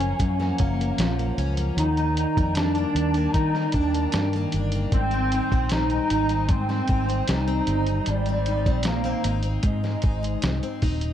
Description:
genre	indie pop, bedroom pop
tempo	76 BPM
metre	4/4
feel	straight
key	unclear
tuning	A4 = 440 Hz
part	warm bass clarinet	melody	0.0-10.8 s	G3 to Eb4	-26 LUFS	equal	ensemble chorus, analog delay
part	picked plugged-in steel-string acoustic guitar	accompaniment	0.0-11.1 s	Gb2 to Eb4	-30 LUFS	left 2 dB	wide subtle chorus, vibrato effect
part	warbly tape-like pad	sustained chords	0.0-11.1 s	Eb3 to Bb5	-36 LUFS	equal	chorus, built-in reverb
part	vintage muted fingered electric bass	bass	0.0-11.1 s	Eb1 to Eb3	-26 LUFS	equal	none
part	lo-fi sampler-style drum kit	drums	0.0-11.1 s	hi-hat, kick drum, snare drum	-26 LUFS	equal	none
room	light reverb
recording	dark, warm production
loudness	-21 LUFS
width	side -10 dB against mid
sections	0.0-11.1 A section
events	none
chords	0.0 Gbmaj7; 1.8 Ebmaj7; 4.9 Abmaj7

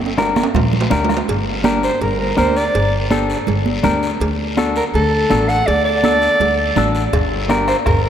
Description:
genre	latin, cumbia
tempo	164 BPM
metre	4/4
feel	straight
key	G harmonic minor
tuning	A4 = 438 Hz
part	upright bass	bass	0.0-8.1 s	G1 to D2	-20 LUFS	equal	none
part	congas	percussion	0.0-7.7 s	none	-23 LUFS	right 5 dB	none
part	timbales and cowbell	percussion	0.1-8.1 s	none	-26 LUFS	right 5 dB	none
part	clean electric guitar	accompaniment	0.2-7.8 s	D4 to Bb4	-20 LUFS	left 3 dB	none
part	bombo	percussion	0.2-1.3, 7.1-8.0 s	none	-23 LUFS	left 1 dB	none
part	guiro	percussion	0.2-8.1 s	none	-30 LUFS	left 4 dB	none
part	breathy soprano saxophone	melody	1.8-8.1 s	A4 to F#5	-18 LUFS	right 1 dB	none
room	wet cathedral reverb, RT60 6.5 s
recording	in a vast, echoing space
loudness	-14 LUFS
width	side -9 dB against mid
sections	0.0-1.3 A section; 1.3-8.1 B section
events	drum fill 0.0-1.3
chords	0.0 Gm; 4.2 D; 7.1 Gm

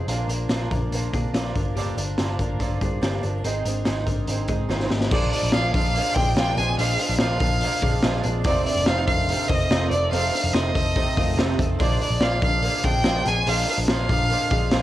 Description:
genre	jangly indie pop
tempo	144 BPM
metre	4/4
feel	straight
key	unclear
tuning	A4 = 440 Hz
part	fingerpicked twelve-string acoustic guitar	accompaniment	0.0-14.8 s	F2 to Eb4	-29 LUFS	right 7 dB	none
part	twelve-string electric guitar	arpeggios	0.0-14.8 s	Ab3 to C5	-32 LUFS	left 9 dB	tape echo
part	vintage muted picked electric bass	bass	0.0-14.8 s	F1 to Bb2	-26 LUFS	equal	none
part	raw garage drum kit	drums	0.1-14.8 s	crash cymbal, hi-hat, kick drum, snare drum	-24 LUFS	equal	cassette tape
part	clear violin	melody	5.1-14.8 s	D5 to Ab5	-24 LUFS	equal	cassette tape
room	light reverb, small room ambience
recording	home recording on cassette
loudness	-20 LUFS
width	side -14 dB against mid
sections	0.0-5.1 A section; 5.1-14.8 B section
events	drum fill 4.7-5.1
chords	0.1 Bb; 1.6 Gm7; 3.4 Ab; 5.1 Bb7; 8.5 F7; 11.8 Bb7

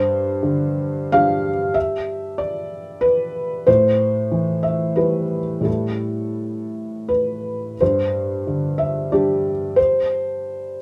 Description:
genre	neoclassical minimalist piano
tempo	82-96 BPM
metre	3/4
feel	rubato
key	unclear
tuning	A4 = 440 Hz
part	felt-muted upright piano	solo	0.0-10.8 s	G2 to F5	-21 LUFS	equal	none
room	light reverb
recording	none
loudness	-21 LUFS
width	mono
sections	0.0-7.8 A section; 7.8-10.8 A section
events	none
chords	0.0 Gsus4; 3.7 Am7; 7.8 Gsus4

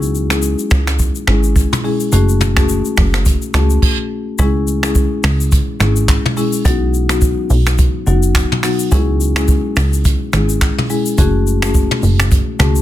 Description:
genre	afrobeats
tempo	106 BPM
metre	4/4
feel	swing 58% on 16ths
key	C# minor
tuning	A4 = 440 Hz
part	marimba with medium mallets	accompaniment	0.0-12.8 s	F#3 to G#4	-18 LUFS	left 3 dB	none
part	plucky analog bass	bass	0.0-12.8 s	F#1 to C#2	-15 LUFS	equal	none
part	jazz brush drum kit	drums	0.0-12.8 s	crash cymbal, finger snaps, handclaps, hi-hat, kick drum, rim click, shaker, toms	-16 LUFS	equal	soft clipping on snare
room	little or no reverb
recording	dense, heavily limited modern master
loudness	-12 LUFS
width	side -13 dB against mid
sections	0.0-4.4 A section; 4.4-12.8 B section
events	stop 3.8-4.4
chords	0.0 C#m; 2.1 F#madd9; 4.4 C#m; 6.7 B; 8.9 C#m; 11.2 F#madd9

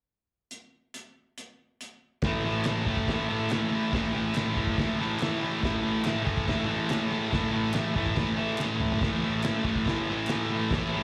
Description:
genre	garage rock duo or trio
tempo	141 BPM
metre	4/4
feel	straight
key	unclear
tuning	A4 = 442 Hz
part	cloth-damped thuddy drum kit	drums	0.5-10.8 s	crash cymbal, hi-hat, kick drum, snare drum, toms	-34 LUFS	equal	none
part	thick fuzz guitar	riff	2.2-11.0 s	A2 to A3	-29 LUFS	equal	distortion, slapback echo
part	group handclap	percussion	2.6-10.4 s	none	-47 LUFS	equal	none
room	small room ambience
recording	live gig heard through the venue's PA, club reverb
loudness	-28 LUFS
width	mono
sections	0.5-2.2 A section; 2.2-11.0 B section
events	drum fill 8.6-9.0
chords	0.5 N.C.; 2.2 A5

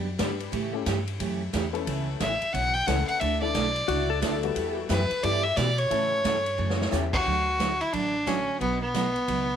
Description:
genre	country, western swing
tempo	178 BPM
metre	4/4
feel	swing 62% on 8ths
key	D major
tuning	A4 = 440 Hz
part	picked steel-string acoustic guitar	accompaniment	0.0-9.5 s	B2 to A4	-33 LUFS	right 10 dB	none
part	upright bass	bass	0.0-9.6 s	A1 to B2	-31 LUFS	equal	none
part	honky-tonk upright piano	accompaniment	0.2-8.6 s	D3 to B4	-34 LUFS	left 11 dB	none
part	swinging big-band drum kit	drums	0.2-9.4 s	crash cymbal, hi-hat, kick drum, ride cymbal, snare drum	-33 LUFS	equal	none
part	clear fiddle	melody	2.2-9.6 s	B3 to G5	-26 LUFS	equal	none
part	clean lap steel guitar	second line	3.9-4.8 s	F#4 to A4	-30 LUFS	left 10 dB	tape echo
room	light reverb, small room ambience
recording	1960s-style stereo with parts hard left and right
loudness	-24 LUFS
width	side -8 dB against mid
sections	0.0-7.3 A section; 7.3-9.6 B section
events	drum fill 6.6-6.9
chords	0.0 G; 0.5 A7; 1.9 Aadd9; 3.2 Dsus2; 4.6 Em; 5.9 A; 7.3 D; 8.6 B

